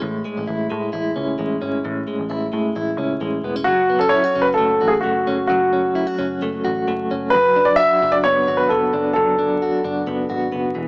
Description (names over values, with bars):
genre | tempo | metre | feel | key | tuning
jangly indie pop | 131 BPM | 4/4 | straight | A major | A4 = 439 Hz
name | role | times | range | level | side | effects
direct-recorded clean electric guitar | arpeggios | 0.0-10.9 s | A2 to F#4 | -22 LUFS | equal | tremolo
vintage muted picked electric bass | bass | 0.0-10.9 s | E1 to A2 | -31 LUFS | equal | none
clear upright piano | melody | 3.6-9.8 s | F#4 to E5 | -16 LUFS | equal | none
room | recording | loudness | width
moderate echo chamber reverb, RT60 1.8 s, studio reverb | dry, gritty hardware recording, vinyl crackle, small speaker sound | -16 LUFS | side -27 dB against mid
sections
0.0-3.7 A section; 3.7-10.9 B section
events
none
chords
0.0 Amaj7; 3.7 F#m; 7.3 Bm/F#